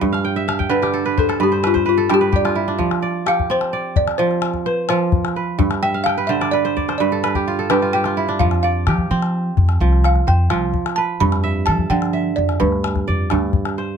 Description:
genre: west african traditional, West African string and xylophone music.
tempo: 86 BPM (dotted quarters).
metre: 12/8.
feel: straight.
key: unclear.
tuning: A4 = 440 Hz.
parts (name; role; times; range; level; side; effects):
kora; arpeggios; 0.0-14.0 s; G2 to G5; -20 LUFS; right 4 dB; none.
calabash; percussion; 0.0-13.8 s; none; -22 LUFS; left 6 dB; none.
balafon; melody; 0.7-13.0 s; F4 to B5; -20 LUFS; left 1 dB; none.
upright bass; bass; 8.4-13.5 s; C2 to F3; -18 LUFS; equal; none.
room: light reverb.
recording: close, detailed microphones.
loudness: -16 LUFS.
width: side -7 dB against mid.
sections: 0.0-14.0 A section.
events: balafon solo 0.0-14.0; kora fill 0.1-2.8, 5.8-8.4.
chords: 0.0 G; 2.8 F5; 5.6 G; 8.4 F5; 11.2 G/F.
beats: | 0.02 0.71 1.41 2.11 | 2.80 3.50 4.20 4.90 | 5.60 6.30 7.00 7.70 | 8.40 9.10 9.80 10.50 | 11.20 11.90 12.61 13.31.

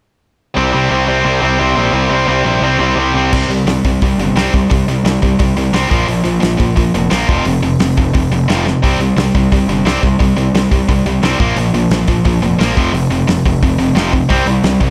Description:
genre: punk rock.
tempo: 175 BPM.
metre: 4/4.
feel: straight.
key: unclear.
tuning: A4 = 439 Hz.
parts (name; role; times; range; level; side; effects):
tight distorted guitar; riff; 0.5-3.3, 14.3-14.9 s; C3 to C4; -20 LUFS; equal; distortion.
tight distorted guitar; riff; 0.6-14.9 s; F2 to C4; -16 LUFS; equal; distortion.
fuzz picked electric bass; bass; 0.6-14.9 s; F1 to C2; -20 LUFS; equal; overdrive.
loose indie drum kit; drums; 3.3-14.9 s; crash cymbal, hi-hat, kick drum, snare drum; -19 LUFS; equal; none.
room: little or no reverb.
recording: none.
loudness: -13 LUFS.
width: mono.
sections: 0.6-3.3 A section; 3.3-14.9 B section.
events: drum fill 8.7.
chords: 0.6 C5; 5.9 Bb5; 7.3 F5; 8.8 C5; 11.4 Bb5; 12.8 F5; 14.3 C5.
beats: | 0.57 0.91 1.26 1.60 | 1.95 2.29 2.63 2.98 | 3.32 3.67 4.01 4.36 | 4.70 5.04 5.39 5.73 | 6.08 6.42 6.76 7.11 | 7.45 7.79 8.14 8.48 | 8.82 9.17 9.51 9.85 | 10.19 10.54 10.88 11.22 | 11.56 11.90 12.24 12.59 | 12.93 13.27 13.61 13.95 | 14.29 14.63.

